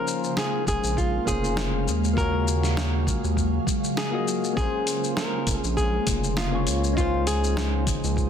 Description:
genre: sunset chillout.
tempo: 100 BPM.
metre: 4/4.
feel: swing 55% on 16ths.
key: Bb minor.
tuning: A4 = 440 Hz.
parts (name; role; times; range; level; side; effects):
flamenco guitar; melody; 0.0-7.8 s; F4 to Bb4; -29 LUFS; left 1 dB; digital delay.
soft electric-piano-like synth keys; accompaniment; 0.0-8.3 s; Bb3 to Eb5; -30 LUFS; moving between left 7 dB and right 7 dB; chorus, auto-pan, tape echo.
ethereal airy pad; sustained chords; 0.0-8.3 s; Db3 to F5; -30 LUFS; equal; ensemble chorus, built-in reverb, phaser.
dusty soul sampler-style drum kit; drums; 0.1-8.3 s; hi-hat, shaker, snare drum; -30 LUFS; left 2 dB; none.
round analog bass; bass; 0.7-8.3 s; F1 to Eb2; -26 LUFS; equal; none.
electronic kick drum; drums; 0.7-8.3 s; none; -29 LUFS; equal; none.
room: light reverb.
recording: dense, heavily limited modern master.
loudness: -22 LUFS.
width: side -8 dB against mid.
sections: 0.0-4.6 A section; 4.6-8.3 B section.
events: none.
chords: 0.0 Bbm7; 1.9 Ebm11; 4.6 Bbm7; 7.0 Dbmaj9.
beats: 0.37 0.97 1.57 | 2.17 2.77 3.37 3.97 | 4.57 5.17 5.77 6.37 | 6.97 7.57 8.17.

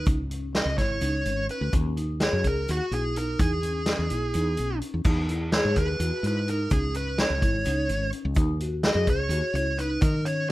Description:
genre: progressive instrumental, band music in an uneven meter.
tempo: 253 BPM (eighths).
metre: 7/8.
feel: straight.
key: E lydian.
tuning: A4 = 435 Hz.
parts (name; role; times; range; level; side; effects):
dark smooth lead guitar; melody; 0.0-10.5 s; F#4 to D#5; -29 LUFS; right 1 dB; overdrive.
vibraphone with soft mallets; arpeggios; 0.0-10.5 s; C#4 to G#4; -32 LUFS; left 1 dB; analog delay.
woody fretless electric bass; bass; 0.0-10.5 s; G#1 to D#3; -28 LUFS; equal; none.
vintage drum kit; drums; 0.1-10.4 s; crash cymbal, hi-hat, kick drum, snare drum; -27 LUFS; equal; none.
tube shaker; percussion; 0.1-10.2 s; none; -49 LUFS; right 12 dB; none.
room: moderate studio reverb, RT60 0.5 s.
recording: rough home demo mix.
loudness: -23 LUFS.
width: side -17 dB against mid.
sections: 0.0-5.0 A section; 5.0-10.5 A section.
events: none.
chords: 0.1 C#5; 1.7 D#m7; 3.4 Emaj7; 6.7 C#5; 8.4 D#m7.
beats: | 0.06 0.30 0.54 0.78 1.01 1.25 1.49 | 1.73 1.97 2.20 2.44 2.68 2.92 3.15 | 3.39 3.63 3.87 4.10 4.34 4.58 4.81 | 5.05 5.29 5.52 5.76 6.00 6.23 6.47 | 6.71 6.94 7.18 7.42 7.65 7.89 8.13 | 8.36 8.60 8.84 9.07 9.31 9.54 9.78 | 10.02 10.25 10.49.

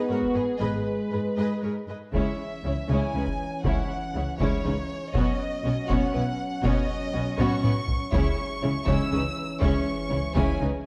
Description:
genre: cinematic, epic orchestral film score.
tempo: 80 BPM (dotted quarters).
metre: 6/8.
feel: straight.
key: C# minor.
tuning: A4 = 440 Hz.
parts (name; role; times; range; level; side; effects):
rich chamber violin section; melody; 0.0-10.6 s; C#5 to E6; -37 LUFS; equal; none.
warm studio violin section; second line; 0.0-10.7 s; D#4 to C#5; -37 LUFS; equal; none.
warm symphonic viola section; accompaniment; 0.0-10.7 s; G#3 to B4; -34 LUFS; equal; none.
mellow French horn section; sustained chords; 0.0-10.9 s; E3 to C#4; -34 LUFS; equal; none.
warm symphonic cello section; bass; 0.1-10.7 s; G#2 to C#3; -34 LUFS; equal; none.
taiko ensemble; drums; 0.2-10.8 s; none; -31 LUFS; equal; none.
warm symphonic double bass section; bass; 0.6-10.7 s; G#1 to C#2; -32 LUFS; equal; none.
room: moderate scoring stage reverb, RT60 1.6 s.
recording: dark, warm production.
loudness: -26 LUFS.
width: mono.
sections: 0.0-2.1 A section; 2.1-10.9 B section.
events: drum fill 7.4-8.1.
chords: 0.0 G#m; 2.1 C#m; 5.1 Badd9; 8.1 C#m.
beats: | 0.60 1.38 | 2.14 2.89 | 3.64 4.40 | 5.14 5.89 | 6.64 7.39 | 8.14 8.88 | 9.62 10.36.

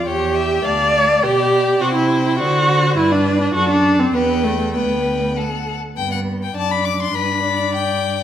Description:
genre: quick classical-period movement for string quartet.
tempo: 102 BPM.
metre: 2/4.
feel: straight.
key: G major.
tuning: A4 = 437 Hz.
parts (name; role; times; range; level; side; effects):
rich violin; melody; 0.0-8.2 s; D5 to D6; -24 LUFS; left 8 dB; none.
clear violin; second line; 0.0-8.2 s; A4 to F5; -25 LUFS; left 4 dB; none.
warm cello; bass; 0.0-8.2 s; D2 to D3; -22 LUFS; right 2 dB; none.
rich viola; accompaniment; 0.1-8.2 s; A3 to D5; -17 LUFS; right 1 dB; none.
room: moderate scoring stage reverb, RT60 1.4 s.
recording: none.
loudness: -15 LUFS.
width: side -10 dB against mid.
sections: 0.0-6.0 A section; 6.0-8.2 B section.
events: none.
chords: 0.1 Em6; 0.7 Dm; 1.2 G/B; 1.8 C; 2.4 D7; 3.0 G; 3.5 D/F#; 4.1 Em; 4.7 G/D; 5.4 D; 6.0 G; 6.6 D/F#; 7.2 G.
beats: | 0.07 0.65 | 1.23 1.81 | 2.39 2.97 | 3.55 4.14 | 4.75 5.36 | 5.97 6.56 | 7.15 7.74.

